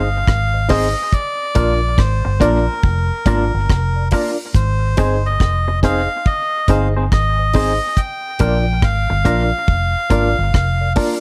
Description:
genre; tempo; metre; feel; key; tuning
roots reggae; 70 BPM; 4/4; swing 63% on 16ths; unclear; A4 = 439 Hz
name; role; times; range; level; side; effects
melodica; melody; 0.0-10.9 s; Bb4 to G5; -23 LUFS; equal; tape echo, plate reverb
reed electric piano; stabs; 0.0-11.2 s; D4 to Eb5; -23 LUFS; equal; fast tremolo, plate reverb
vintage muted fingered electric bass; bass; 0.0-10.9 s; F1 to Bb1; -20 LUFS; equal; none
deep reggae drum kit; drums; 0.3-11.2 s; hi-hat, kick drum, rim click; -19 LUFS; equal; none
clean electric guitar; accompaniment; 0.7-11.1 s; Bb3 to C5; -25 LUFS; equal; tape echo, plate reverb
room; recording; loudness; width
light reverb; vinyl crackle; -17 LUFS; mono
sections
0.0-11.2 A section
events
none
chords
0.0 Ab; 1.1 Bb; 4.5 Ab; 8.0 Bb

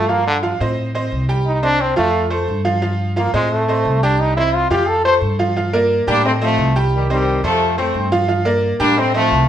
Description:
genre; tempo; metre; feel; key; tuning
latin; 176 BPM; 4/4; straight; G minor; A4 = 441 Hz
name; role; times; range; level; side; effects
brilliant trombone; melody; 0.0-5.2 s; D3 to C5; -17 LUFS; equal; none
bright upright piano; accompaniment; 0.0-9.4 s; F3 to G5; -20 LUFS; right 2 dB; none
upright bass; bass; 0.0-9.5 s; C2 to A2; -20 LUFS; equal; none
bright trombone section; melody; 6.1-9.5 s; Eb3 to D4; -16 LUFS; left 1 dB; none
room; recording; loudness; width
wet large studio reverb, RT60 0.9 s; band playing live in one room; -14 LUFS; side -10 dB against mid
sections
0.0-5.6 A section; 5.6-9.5 B section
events
trombone solo 0.0-5.6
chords
0.1 Gm11; 0.8 Am7b5; 1.5 Cm; 2.1 F; 2.8 Gm11; 3.5 Am7b5; 4.2 Cm; 4.9 F; 5.6 Gm7; 6.2 Cm; 7.6 F; 8.3 Gm7; 9.0 Cm

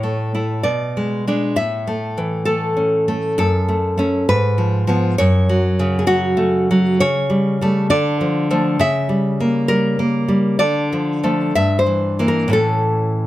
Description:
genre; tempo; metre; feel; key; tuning
romantic piece for solo classical guitar; 61-68 BPM; 2/4; rubato; D minor from 7.0 s; A4 = 440 Hz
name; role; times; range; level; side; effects
nylon-string guitar; solo; 0.0-13.3 s; F#2 to E5; -15 LUFS; equal; none
room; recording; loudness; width
light reverb; close, detailed microphones; -15 LUFS; side -15 dB against mid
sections
0.0-13.3 A section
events
none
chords
0.0 A; 0.7 G#dim/B; 1.6 A; 3.4 F#m; 4.3 Fdim/Ab; 5.2 F#m; 7.0 A7/C#; 7.9 Dm; 8.8 C#dim7; 10.6 Dm; 11.6 Edim/G; 12.5 A

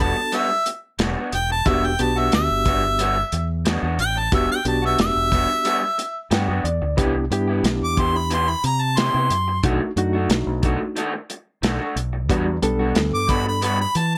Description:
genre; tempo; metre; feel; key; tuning
straight-eighth soul blues; 90 BPM; 4/4; straight; E minor; A4 = 441 Hz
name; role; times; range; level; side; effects
bright harmonica; second line; 0.0-14.2 s; E5 to D6; -24 LUFS; equal; overdrive, slapback echo
reed electric piano; accompaniment; 0.0-13.7 s; G3 to G5; -26 LUFS; equal; overdrive, fast tremolo
electric guitar through a small old amp; stabs; 0.0-14.0 s; D#3 to G4; -30 LUFS; equal; none
fingered electric bass; bass; 0.0-14.2 s; E1 to E3; -27 LUFS; equal; none
warm soul drum kit; drums; 0.3-14.1 s; hi-hat, kick drum, snare drum; -25 LUFS; equal; none
room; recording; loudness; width
light reverb; none; -21 LUFS; mono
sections
0.0-14.2 A section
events
harmonica solo 0.0-14.2; reed electric piano fill 6.0-7.0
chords
0.0 Em9; 7.0 Cmaj7; 9.6 B7#9; 12.3 Em9

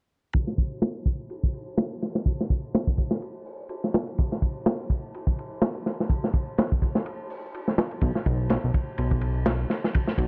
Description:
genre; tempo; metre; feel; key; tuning
breakbeat, breaks; 125 BPM; 4/4; swing 57% on 16ths; unclear; A4 = 440 Hz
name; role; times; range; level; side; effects
crunchy breakbeat drum kit; drums; 0.3-10.3 s; hi-hat, kick drum, ride cymbal, snare drum; -27 LUFS; equal; none
fat analog bass; bass; 8.0-10.3 s; B1; -28 LUFS; equal; tube saturation
room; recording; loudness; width
little or no reverb; low-pass filter; -27 LUFS; mono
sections
0.3-10.3 A section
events
filter sweep 0.3-10.3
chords
none

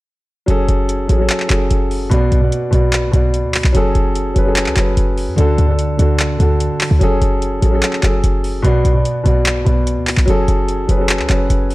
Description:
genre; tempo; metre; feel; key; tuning
hip hop, trap; 147 BPM; 4/4; half-time; F# minor; A4 = 440 Hz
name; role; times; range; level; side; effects
warm concert grand piano; accompaniment; 0.5-11.7 s; B2 to D5; -17 LUFS; equal; none
short 808-style bass; bass; 0.5-11.7 s; F#1 to F#2; -15 LUFS; equal; none
booming analog drum machine; drums; 0.5-11.7 s; handclaps, hi-hat; -21 LUFS; equal; none
room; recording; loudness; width
light reverb, digital ambience; dark, warm production; -13 LUFS; side -19 dB against mid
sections
0.5-11.7 A section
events
none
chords
0.5 F#madd9; 2.1 Bm; 3.7 F#madd9; 5.4 D; 7.0 F#madd9; 8.6 Bm; 10.3 F#madd9

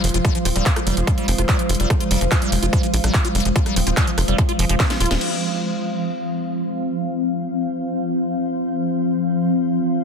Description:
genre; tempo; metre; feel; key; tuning
psychedelic trance; 145 BPM; 4/4; straight; F minor; A4 = 435 Hz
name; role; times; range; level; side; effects
swarming drone; sustained chords; 0.0-10.0 s; F3 to C4; -22 LUFS; left 1 dB; built-in reverb, sidechain pumping
liquid acid bass; riff; 0.0-5.1 s; Eb3 to F4; -26 LUFS; moving between left 5 dB and right 6 dB; phaser, auto-pan, sidechain pumping, ping-pong delay
tight sequencer bass; bass; 0.0-5.2 s; Eb1 to Bb1; -20 LUFS; equal; none
techno drum kit; drums; 0.0-5.3 s; crash cymbal, handclaps, hi-hat, rim click, snare drum; -25 LUFS; right 1 dB; overdrive
deep dark ambient pad; texture; 0.0-10.0 s; F4 to F5; -28 LUFS; right 1 dB; chorus, built-in reverb, sidechain pumping
electronic kick drum; drums; 0.2-4.9 s; none; -18 LUFS; equal; distortion, overdrive
resonant blip pluck; second line; 0.5-5.2 s; C4; -36 LUFS; equal; none
room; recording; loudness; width
light reverb, digital ambience; dense, heavily limited modern master; -18 LUFS; side -6 dB against mid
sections
0.0-5.2 A section; 5.2-10.0 B section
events
drum fill 4.8-5.2; band accent 5.1; filter sweep on synth drone 5.2-10.0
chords
0.0 F5

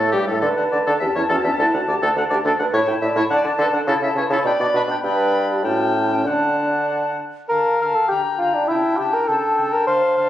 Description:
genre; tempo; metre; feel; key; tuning
quick classical-period movement for wind quintet; 94-106 BPM; 2/4; rubato; D major; A4 = 440 Hz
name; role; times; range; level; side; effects
silver concert flute; melody; 0.0-10.3 s; G4 to B5; -25 LUFS; left 3 dB; none
clear oboe; second line; 0.0-10.3 s; G4 to G5; -24 LUFS; left 4 dB; none
mellow clarinet; accompaniment; 0.0-10.3 s; G3 to E4; -27 LUFS; right 3 dB; none
clear bassoon; bass; 0.0-10.3 s; D2 to C5; -20 LUFS; right 1 dB; none
mellow French horn; accompaniment; 0.1-10.3 s; C#3 to D5; -25 LUFS; right 1 dB; none
room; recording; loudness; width
moderate recital hall reverb, RT60 1.7 s; recorded on a phone in the room, club reverb, compression; -17 LUFS; side -12 dB against mid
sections
0.0-7.5 A section; 7.5-10.3 A section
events
none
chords
0.4 D5; 1.0 A/E; 1.6 D5; 2.7 A; 3.3 D5; 3.9 A/C#; 4.5 G/B (rootless); 5.0 G; 5.6 A7; 6.3 D; 7.5 Dm; 8.1 Gm/D; 8.7 A7/C#

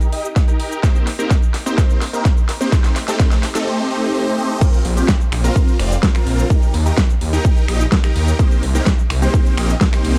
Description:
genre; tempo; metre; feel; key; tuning
EDM, festival progressive house; 127 BPM; 4/4; straight; unclear; A4 = 444 Hz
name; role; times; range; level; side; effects
big supersaw lead; riff; 0.0-10.2 s; A3 to Eb5; -24 LUFS; equal; phaser, sidechain pumping, low-pass filter, dub echo
big-room dance drum kit; drums; 0.0-10.2 s; cabasa, crash cymbal, finger snaps, hi-hat, snare drum, toms; -26 LUFS; equal; overdrive, high-pass filter on snare, high-pass filter on hats, high-pass filter on perc, high-pass filter on toms, high-pass filter on cymbals
electronic kick drum; drums; 0.4-9.9 s; none; -17 LUFS; equal; overdrive
detuned saw bass; bass; 4.8-10.2 s; F1 to Eb2; -19 LUFS; equal; chorus, sidechain pumping
room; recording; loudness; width
little or no reverb; dark, warm production; -16 LUFS; mono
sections
0.0-4.6 A section; 4.6-10.2 B section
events
build-up 0.0-4.6; drum fill 0.0-3.7, 4.3-4.6; drop 4.6-10.2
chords
0.0 Eb; 0.8 Cm7; 2.7 Am7b5; 4.6 Bbsus2; 6.5 Eb; 8.4 Cm7

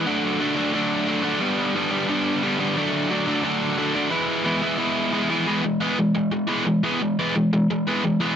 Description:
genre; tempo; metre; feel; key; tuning
punk; 177 BPM; 4/4; straight; unclear; A4 = 440 Hz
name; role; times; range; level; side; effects
biting overdriven guitar; solo; 0.0-8.4 s; G2 to E4; -20 LUFS; equal; none
room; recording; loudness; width
light reverb; nothing above 7.8 kHz; -20 LUFS; side -8 dB against mid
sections
0.0-5.5 A section; 5.5-8.4 B section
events
none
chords
0.1 D; 1.4 G; 2.8 D; 4.1 E

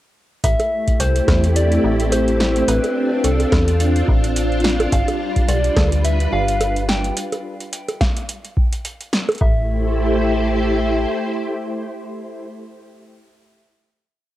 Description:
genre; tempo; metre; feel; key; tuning
IDM; 107 BPM; 4/4; swing 56% on 16ths; A minor; A4 = 439 Hz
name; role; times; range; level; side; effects
soft struck synth lead; melody; 0.4-12.4 s; A4 to G5; -24 LUFS; left 1 dB; chorus, tape echo
soft string machine; sustained chords; 0.4-12.4 s; G3 to C5; -21 LUFS; equal; ensemble chorus, vintage 12-bit sampler grit, cassette tape
metallic FM bass; bass; 0.4-11.1 s; G1 to E2; -20 LUFS; equal; tube saturation
electro analog drum machine; drums; 0.4-9.4 s; bongos, hi-hat, snare drum; -23 LUFS; right 1 dB; overdrive
electronic kick drum; drums; 0.4-9.5 s; none; -18 LUFS; equal; overdrive
room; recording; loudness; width
light reverb; home recording on cassette; -16 LUFS; side -14 dB against mid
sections
0.4-9.4 groove; 9.4-11.7 final chord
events
none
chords
0.4 Am7; 2.7 Dm7/A; 4.9 G7; 7.2 N.C.; 9.4 Am7

